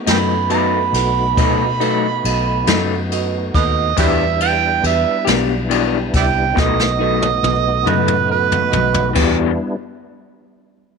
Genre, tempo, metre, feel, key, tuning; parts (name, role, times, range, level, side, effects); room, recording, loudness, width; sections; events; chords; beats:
slow blues; 46 BPM (dotted quarters); 12/8; straight; E minor; A4 = 440 Hz
tonewheel organ; sustained chords; 0.0-9.8 s; G3 to F#4; -25 LUFS; left 1 dB; slow rotary speaker, chorus vibrato
overdriven harmonica; second line; 0.1-9.2 s; G4 to B5; -18 LUFS; right 11 dB
bell-like tine electric piano; accompaniment; 0.1-9.6 s; E4 to F#5; -25 LUFS; right 15 dB; phaser
electric guitar through a small old amp; accompaniment; 0.1-9.5 s; B2 to G4; -21 LUFS; left 16 dB; tremolo
vintage muted fingered electric bass; bass; 0.1-9.6 s; B1 to B2; -22 LUFS; left 1 dB
jazz brush drum kit; drums; 0.1-9.4 s; crash cymbal, kick drum, ride cymbal, snare drum, toms; -21 LUFS; left 2 dB
light reverb, studio ambience; 1960s-style stereo with parts hard left and right; -14 LUFS; side -5 dB against mid
0.0-9.2 A section; 9.2-11.0 B section
harmonica solo 0.0-9.2; drum fill 6.6-9.2
0.0 B7; 4.0 Em7; 6.6 B7; 9.2 Em7
0.07 1.37 2.67 | 3.97 5.27 6.57 7.87 | 9.17